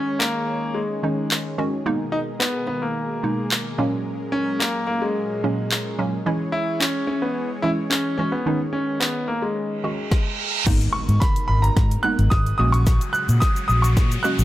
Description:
dance-pop; 109 BPM; 4/4; straight; G# minor; A4 = 440 Hz
clear concert grand piano; melody; 0.0-14.4 s; G#3 to F#6; -24 LUFS; equal; tape echo
hollow square pluck; accompaniment; 0.0-14.4 s; A#2 to F#4; -25 LUFS; right 2 dB; chorus, sidechain pumping
soft supersaw; sustained chords; 0.0-14.4 s; A#2 to C#5; -31 LUFS; equal; sidechain pumping
deep house drum kit; drums; 0.2-14.4 s; crash cymbal, handclaps, hi-hat, kick drum, shaker, snare drum; -22 LUFS; equal
reverse cymbal, riser and impact; sound effects; 9.9-14.4 s; -30 LUFS; right 2 dB
vintage muted fingered electric bass; bass; 10.7-14.4 s; G#1 to A#2; -19 LUFS; equal; sidechain pumping
light reverb; -19 LUFS; side -14 dB against mid
0.0-10.7 A section; 10.7-14.4 B section
kick muted 1.9-2.4; reverse cymbal 9.9-10.7; build-up 10.7-14.4; drum fill 10.7-14.4; impact 10.7-12.9; riser 10.7-14.4
0.0 C#sus2; 1.9 G#madd9; 3.8 F#add9/A#; 6.3 C#m; 8.5 C#sus2; 10.7 G#madd9; 12.6 F#add9/A#

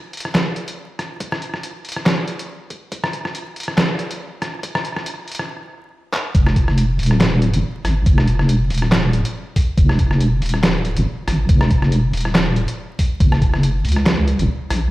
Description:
deep dubstep; 140 BPM; 4/4; swing 55% on 16ths, half-time; A4 = 439 Hz
trip hop sampler-style drum kit; drums; 0.1-14.8 s; handclaps, hi-hat, rim click, snare drum; -21 LUFS; equal; studio ambience
electronic kick drum; drums; 1.2-13.5 s; -15 LUFS; equal; high-pass filter on kick, studio ambience
deep soft wobble bass; bass; 6.3-14.9 s; Eb1 to Db2; -16 LUFS; equal; chorus
light reverb; played on a big sound system in a bare room, large studio reverb, vinyl crackle; -16 LUFS; side -18 dB against mid
0.0-6.3 A section; 6.3-14.9 B section
build-up 0.0-6.3; stop 5.5-6.3; drum fill 6.1; drop 6.3-14.9

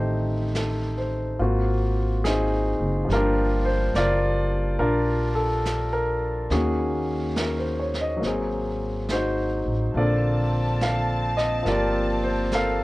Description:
jazz ballad; 70 BPM; 4/4; swing 66% on 8ths; A4 = 440 Hz
clear concert grand piano; accompaniment; 0.0-12.8 s; D3 to F5; -24 LUFS; left 1 dB
upright bass; bass; 0.0-12.8 s; Gb1 to Eb2; -26 LUFS; equal
vintage brush drum kit; drums; 0.5-12.8 s; brushed snare drum, hi-hat, snare drum; -35 LUFS; right 2 dB
clear studio string section; sustained chords; 9.9-12.8 s; D3 to A5; -30 LUFS; right 1 dB
little or no reverb; worn, warbling old tape, cassette tape, warbly pitch drift; -22 LUFS; side -19 dB against mid
0.0-12.8 A section
0.0 Am7b5; 1.4 Ab13; 3.1 Gm7; 6.5 Ebm7; 8.2 Ab9; 9.9 Bbmaj9; 11.6 Gm11

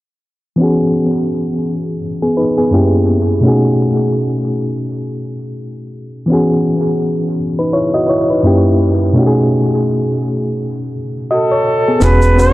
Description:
lo-fi hip hop; 84 BPM; 4/4; swing 60% on 16ths; E major; A4 = 444 Hz
bright reed electric piano; accompaniment; 0.6-12.5 s; F#2 to D#5; -13 LUFS; equal; fast tremolo, cassette tape, low-pass filter, analog delay
breathy flugelhorn; melody; 11.3-12.5 s; A4 to C#5; -14 LUFS; right 1 dB; low-pass filter
deep dub fingered electric bass; bass; 12.0-12.5 s; E1; -10 LUFS; equal
hi-hat and shaker; drums; 12.0-12.5 s; -29 LUFS; equal
light reverb, studio reverb; echo-heavy mix, cassette tape, low-pass filter; -12 LUFS; side -17 dB against mid
0.6-12.0 A section
filter sweep 0.6-12.0; kick muted 12.0-12.5
0.6 E69; 2.7 F#7b9; 3.4 B13; 6.3 E69; 8.4 F#7b9; 9.2 B13; 12.0 E69

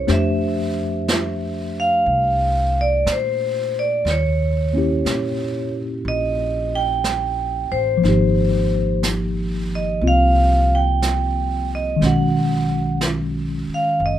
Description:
jazz ballad; 60 BPM; 4/4; swing 68% on 8ths; A4 = 439 Hz
vibraphone with medium hard mallets; melody; 0.0-14.2 s; C5 to G5; -21 LUFS; right 1 dB
mellow tine electric piano; accompaniment; 0.0-14.2 s; D#3 to Db5; -23 LUFS; left 1 dB; medium stereo tremolo
upright bass; bass; 0.0-14.2 s; F#1 to Bb2; -22 LUFS; equal
jazz brush drum kit; drums; 0.1-14.2 s; brushed snare drum, hi-hat, snare drum; -27 LUFS; right 2 dB
light reverb; -17 LUFS; side -11 dB against mid
0.1-14.2 A section
0.1 Fmaj9; 4.1 Eb7b9; 8.0 Abmaj9; 12.0 B

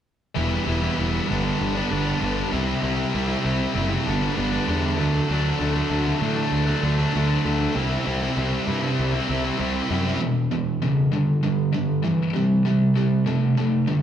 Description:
rock; 98 BPM; 4/4; straight; A4 = 439 Hz
tight distorted guitar; riff; 0.3-14.0 s; E2 to E4; -25 LUFS; left 6 dB; distortion
sludgy distorted guitar; riff; 0.4-14.0 s; E2 to E4; -23 LUFS; right 4 dB; overdrive
fuzz picked electric bass; bass; 0.4-10.1 s; E1 to A2; -26 LUFS; equal; overdrive
wet large studio reverb, RT60 1.4 s; band playing live in one room; -20 LUFS; side -9 dB against mid
0.4-10.2 A section; 10.2-14.0 B section
0.4 Em; 1.3 G; 2.5 C; 4.1 G6; 5.0 D; 7.8 C; 10.2 E5; 11.1 G5; 12.4 C5

